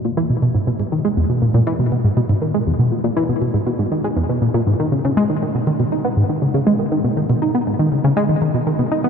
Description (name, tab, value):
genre	ambient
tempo	120 BPM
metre	4/4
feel	straight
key	G# minor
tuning	A4 = 440 Hz
part	tight sequenced synth	solo	0.0-9.1 s	E2 to D#4	-16 LUFS	equal	chorus, ping-pong delay
room	wet huge ambient reverb, RT60 8.3 s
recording	in a vast, echoing space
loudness	-16 LUFS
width	side -6 dB against mid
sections	0.0-9.1 A section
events	none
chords	none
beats	0.17 | 0.67 1.17 1.67 2.17 | 2.67 3.17 3.67 4.17 | 4.67 5.17 5.67 6.17 | 6.67 7.17 7.67 8.17 | 8.67